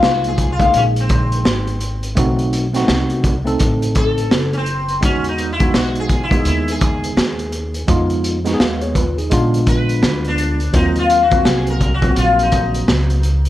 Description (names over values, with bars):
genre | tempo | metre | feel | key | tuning
hip hop, jazz-hop | 84 BPM | 4/4 | swing 62% on 16ths | Eb dorian | A4 = 440 Hz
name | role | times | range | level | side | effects
sitar | melody | 0.0-13.4 s | C4 to Cb5 | -19 LUFS | left 4 dB | plate reverb
tine electric piano | accompaniment | 0.0-13.3 s | Gb3 to F5 | -21 LUFS | right 1 dB | medium stereo tremolo, plate reverb
upright bass | bass | 0.0-13.5 s | F#1 to F2 | -20 LUFS | equal | none
crunchy breakbeat drum kit | drums | 0.0-13.5 s | hi-hat, kick drum, snare drum | -18 LUFS | equal | none
room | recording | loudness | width
light reverb | dark, warm production | -14 LUFS | side -14 dB against mid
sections
0.0-13.5 A section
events
sitar solo 0.0-13.5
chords
0.0 Db69 (rootless); 2.2 B7b9; 5.0 Emaj9; 7.9 Fm7b5; 9.3 Bb7b9; 10.7 Ebm69